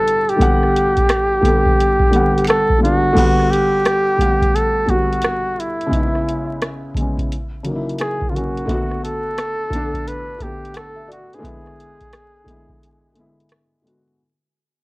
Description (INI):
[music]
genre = lo-fi hip hop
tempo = 87 BPM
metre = 4/4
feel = swing 65% on 16ths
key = G major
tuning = A4 = 440 Hz
[part]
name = mellow flugelhorn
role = melody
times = 0.0-13.5 s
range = E4 to B4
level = -18 LUFS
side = equal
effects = cassette tape, plate reverb
[part]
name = felt-muted upright piano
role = accompaniment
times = 0.0-14.2 s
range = C#3 to F#5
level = -21 LUFS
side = left 1 dB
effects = cassette tape, plate reverb
[part]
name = booming analog drum machine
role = drums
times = 0.1-14.1 s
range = crash cymbal, hi-hat, kick drum, rim click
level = -20 LUFS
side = equal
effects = cassette tape
[part]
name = finger snap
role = percussion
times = 1.1-2.7 s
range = none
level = -31 LUFS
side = right 4 dB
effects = none
[sound]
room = light reverb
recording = home recording on cassette, vinyl crackle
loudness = -15 LUFS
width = side -23 dB against mid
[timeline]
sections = 0.0-3.2 A section; 3.2-14.2 B section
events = fade-out 3.2-14.2; break 12.8-14.2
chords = 0.0 Gmaj7; 5.9 C#m7; 7.3 F#7; 8.7 Bm7; 11.4 E7